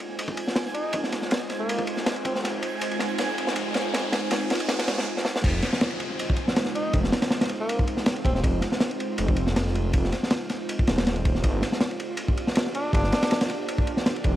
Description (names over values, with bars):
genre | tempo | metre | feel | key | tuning
drum and bass, jungle | 160 BPM | 4/4 | swing 53% on 16ths | F dorian | A4 = 441 Hz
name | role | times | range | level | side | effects
crunchy breakbeat drum kit | drums | 0.0-14.3 s | crash cymbal, kick drum, ride cymbal, snare drum | -25 LUFS | equal | high-pass filter on kick, high-pass filter on cymbals, high-pass filter on snare, high-pass filter on room
riser and downlifter | sound effects | 1.2-8.4 s | none | -37 LUFS | equal | none
twinkling granular texture | texture | 0.1-5.1 s | Ab5 | -37 LUFS | right 3 dB | built-in reverb
breathy tenor saxophone | melody | 0.7-2.4, 6.8-8.4, 12.8-13.5 s | Bb3 to Eb4 | -32 LUFS | equal | dub echo
detuned saw bass | bass | 0.9-14.4 s | Eb1 to G1 | -28 LUFS | equal | high-pass filter
room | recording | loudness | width
light reverb, small room ambience | dry, gritty hardware recording, vinyl crackle | -23 LUFS | side -13 dB against mid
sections
0.0-5.4 A section; 5.4-14.4 B section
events
build-up 0.0-5.4; riser 1.2-5.1; drum fill 2.4-5.1, 5.2; break 5.1-5.4; drop 5.4-14.4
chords
0.0 Fm7; 11.4 Gm7